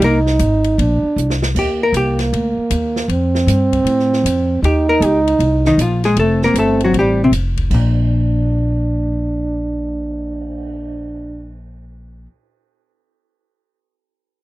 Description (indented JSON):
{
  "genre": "jazz, small-group swing and bop",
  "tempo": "156 BPM",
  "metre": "4/4",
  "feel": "swing 65% on 8ths",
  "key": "Bb major",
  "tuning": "A4 = 440 Hz",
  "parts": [
    { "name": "hollow-body jazz guitar", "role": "melody", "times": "0.0-2.2, 4.7-12.3 s", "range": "Bb2 to Bb4", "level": "-16 LUFS", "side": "left 2 dB", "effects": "none" },
    { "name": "breathy trombone", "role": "second line", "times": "0.0-11.5 s", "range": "Bb3 to Eb4", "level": "-18 LUFS", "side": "right 2 dB", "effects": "none" },
    { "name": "upright bass", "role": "bass", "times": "0.0-12.3 s", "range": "F1 to A2", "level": "-18 LUFS", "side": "equal", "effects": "none" },
    { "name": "open jazz drum kit", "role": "drums", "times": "0.0-10.7 s", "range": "crash cymbal, cymbal swell, hi-hat, kick drum, ride cymbal, snare drum", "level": "-27 LUFS", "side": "equal", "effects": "none" }
  ],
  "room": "light reverb",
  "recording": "dry, close 1970s-style studio recording",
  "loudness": "-14 LUFS",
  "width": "side -17 dB against mid",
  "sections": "0.0-1.6 A section; 1.6-7.7 B section; 7.7-10.8 C section",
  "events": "drum fill 1.2-1.6",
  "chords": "0.0 Abadd9; 0.8 Bbadd9; 1.6 Eb5; 3.1 F; 4.6 Eb5; 6.2 F; 7.7 Bb"
}